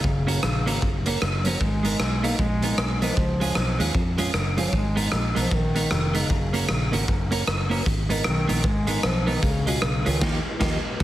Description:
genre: ska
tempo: 153 BPM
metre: 4/4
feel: swing 61% on 8ths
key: G# dorian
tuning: A4 = 440 Hz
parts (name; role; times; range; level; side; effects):
- dark bass clarinet; melody; 0.0-10.4 s; B2 to A#3; -27 LUFS; equal; slapback echo
- fingered electric bass; bass; 0.0-11.0 s; E#1 to E#2; -26 LUFS; equal; none
- raw garage drum kit; drums; 0.0-11.0 s; crash cymbal, hi-hat, kick drum, rim click, snare drum; -25 LUFS; equal; slapback echo
- clean electric guitar; accompaniment; 0.3-10.8 s; E#3 to A#4; -29 LUFS; right 3 dB; wide subtle chorus, slapback echo
room: light reverb, small room ambience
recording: heavily compressed radio sound, multiband compression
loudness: -21 LUFS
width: side -14 dB against mid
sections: 0.0-11.0 A section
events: band accent 10.2-11.0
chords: 0.0 F#; 1.6 G#madd9; 3.2 C#; 4.7 G#madd9; 6.3 F#; 7.9 G#madd9; 9.4 C#; 10.2 D#add9

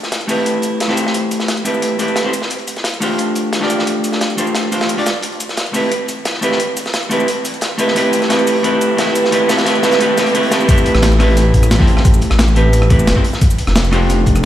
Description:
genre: liquid drum and bass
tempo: 176 BPM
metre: 4/4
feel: straight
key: A minor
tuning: A4 = 440 Hz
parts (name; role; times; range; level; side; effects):
- breakbeat sampler-style drum kit; drums; 0.0-14.4 s; hi-hat, rim click, shaker, snare drum; -22 LUFS; equal; overdrive
- crunchy breakbeat drum kit; drums; 0.0-14.3 s; hi-hat, snare drum; -22 LUFS; equal; high-pass filter on hats, high-pass filter on snare, high-pass filter on room
- vintage hollow-body jazz guitar; accompaniment; 0.3-14.5 s; A3 to D5; -15 LUFS; equal; dub echo
- electronic kick drum; drums; 10.7-14.3 s; none; -13 LUFS; equal; overdrive
- dark detuned saw bass; bass; 10.9-14.5 s; E1 to A1; -13 LUFS; equal; none
room: moderate concert hall reverb, RT60 2.3 s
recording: played on a big sound system in a bare room, stone room reverb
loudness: -12 LUFS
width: side -12 dB against mid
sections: 0.0-10.7 A section; 10.7-14.5 B section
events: build-up 0.0-10.7; drop 10.7-14.5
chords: 0.0 Am9; 2.3 F69; 5.2 Am9; 13.2 F69

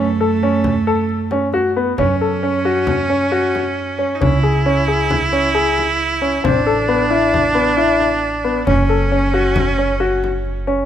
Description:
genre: contemporary instrumental, chamber music in an uneven meter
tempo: 135 BPM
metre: 5/4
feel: straight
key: F# minor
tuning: A4 = 440 Hz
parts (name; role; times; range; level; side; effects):
- bright viola; second line; 0.0-10.6 s; A3 to E4; -19 LUFS; right 3 dB; none
- clear baby grand piano; arpeggios; 0.0-10.8 s; B3 to A4; -18 LUFS; left 3 dB; none
- upright bass; bass; 0.0-10.9 s; F#1 to F#2; -22 LUFS; right 2 dB; none
- frame drum; percussion; 0.4-10.8 s; none; -24 LUFS; left 2 dB; none
room: moderate recital hall reverb, RT60 1.7 s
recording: close, detailed microphones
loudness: -14 LUFS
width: side -10 dB against mid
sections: 0.0-2.0 A section; 2.0-10.9 B section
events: none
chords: 0.0 F#m; 2.0 F#5; 4.2 C#m; 6.4 Asus2; 8.7 F#5

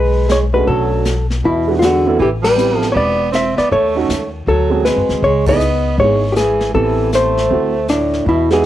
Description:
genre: jazz, small-group swing and bop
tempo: 158 BPM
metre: 4/4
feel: swing 63% on 8ths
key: E major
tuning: A4 = 441 Hz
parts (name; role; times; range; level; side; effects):
- hollow-body jazz guitar; melody; 0.0-8.7 s; D4 to E5; -15 LUFS; left 2 dB; plate reverb
- breathy tenor saxophone; second line; 0.0-8.7 s; A2 to C4; -20 LUFS; right 6 dB; cassette tape, plate reverb
- upright bass; bass; 0.0-8.7 s; E1 to F#2; -19 LUFS; left 1 dB; none
- jazz brush drum kit; drums; 0.3-8.7 s; brushed snare drum, hi-hat, kick drum, ride cymbal, snare drum; -25 LUFS; left 1 dB; cassette tape
- warm grand piano; accompaniment; 0.5-8.6 s; G#3 to A4; -20 LUFS; right 6 dB; cassette tape, plate reverb
room: moderate small room reverb, RT60 0.6 s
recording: home recording on cassette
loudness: -12 LUFS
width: side -13 dB against mid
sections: 0.0-8.7 A section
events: band accent 2.4, 5.4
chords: 0.0 Eadd9 (rootless); 1.4 E7; 2.2 Am9; 3.7 D#m7b5; 4.5 D7#11; 5.2 C#m7; 6.7 Am7; 7.5 D9

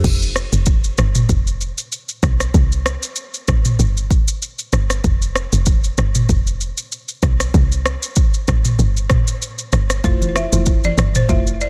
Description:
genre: afrobeats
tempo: 96 BPM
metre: 4/4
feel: swing 55% on 16ths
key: unclear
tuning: A4 = 442 Hz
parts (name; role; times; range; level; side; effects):
- woody log drum bass; bass; 0.0-11.7 s; F1 to C2; -20 LUFS; equal; none
- afro-pop drum kit; drums; 0.0-11.7 s; crash cymbal, kick drum, rim click, shaker, toms; -20 LUFS; equal; soft clipping on snare
- mallet-like synth pluck; accompaniment; 10.0-11.5 s; A3 to C5; -28 LUFS; equal; chorus
- balafon; riff; 10.0-11.7 s; C5 to E5; -28 LUFS; equal; delay
- congas; percussion; 10.2-11.5 s; none; -29 LUFS; equal; none
room: little or no reverb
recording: dense, heavily limited modern master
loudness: -17 LUFS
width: mono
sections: 0.0-11.7 A section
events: none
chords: 0.0 N.C.; 2.5 Am; 3.8 N.C.; 7.5 Am; 8.8 N.C.; 10.0 Fmaj7

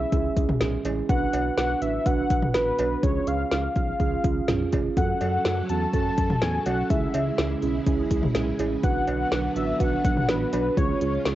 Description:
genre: synth-pop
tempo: 124 BPM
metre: 4/4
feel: straight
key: unclear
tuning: A4 = 438 Hz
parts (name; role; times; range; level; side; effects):
- wide unison lead; melody; 0.0-11.3 s; B4 to A5; -28 LUFS; left 2 dB; analog delay
- muted felt-like synth keys; accompaniment; 0.0-11.3 s; C#4 to B4; -27 LUFS; right 6 dB; chorus, cassette tape
- smooth gliding synth bass; bass; 0.0-11.3 s; E#1 to F#2; -30 LUFS; left 1 dB; none
- deep house drum kit; drums; 0.1-11.3 s; cowbell, hi-hat, kick drum, snare drum, toms; -26 LUFS; left 1 dB; none
- string machine, violins; sustained chords; 5.0-11.3 s; C#3 to A4; -34 LUFS; left 1 dB; ensemble chorus, cassette tape
room: moderate spring reverb, RT60 1.4 s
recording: home recording on cassette, nothing above 7.8 kHz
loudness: -22 LUFS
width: side -14 dB against mid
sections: 0.0-11.3 A section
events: none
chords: 0.0 C#m; 1.1 Bm; 3.0 C#; 5.0 F#m; 6.9 C#m; 8.8 Bm; 10.8 C#

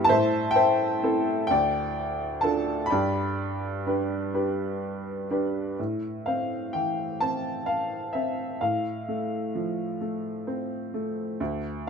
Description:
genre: classical, lyrical solo piano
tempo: 43 BPM (dotted quarters)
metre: 6/8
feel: rubato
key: A minor from 5.8 s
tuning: A4 = 439 Hz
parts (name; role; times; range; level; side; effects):
- clear upright piano; solo; 0.0-11.9 s; D2 to B5; -25 LUFS; equal; none
room: light reverb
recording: minimal, uncompressed stereo recording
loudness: -25 LUFS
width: side -6 dB against mid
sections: 0.0-5.8 A section; 5.8-11.9 B section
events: none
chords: 0.1 Am; 1.5 Dm; 2.9 G; 5.8 Am; 8.6 F/A

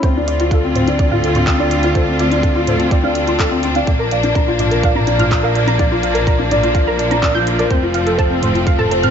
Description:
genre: piano and strings electronica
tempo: 125 BPM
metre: 4/4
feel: straight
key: D minor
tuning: A4 = 439 Hz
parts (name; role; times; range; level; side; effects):
- bright studio string section; sustained chords; 0.0-9.1 s; D3 to F4; -21 LUFS; equal; sidechain pumping
- soft round pluck; arpeggios; 0.0-9.1 s; C5 to G6; -23 LUFS; right 4 dB; analog chorus, vintage 12-bit sampler grit, sidechain pumping, tape echo
- felt-muted upright piano; riff; 0.0-9.1 s; C4 to D5; -17 LUFS; left 2 dB; tape echo
- clear symphonic double bass section; bass; 0.0-9.1 s; F1 to D2; -21 LUFS; right 1 dB; sidechain pumping
- electronic kick drum; drums; 0.0-8.8 s; none; -17 LUFS; right 1 dB; none
- organic electronic drum kit; drums; 0.0-9.1 s; handclaps, hi-hat, toms; -23 LUFS; equal; high-pass filter on hats, high-pass filter on toms, high-pass filter on snare, high-pass filter on room
room: light reverb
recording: nothing above 7.6 kHz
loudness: -13 LUFS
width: side -8 dB against mid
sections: 0.0-9.1 A section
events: drop 0.0-9.1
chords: 0.0 Dm7; 3.9 Bb; 7.7 F

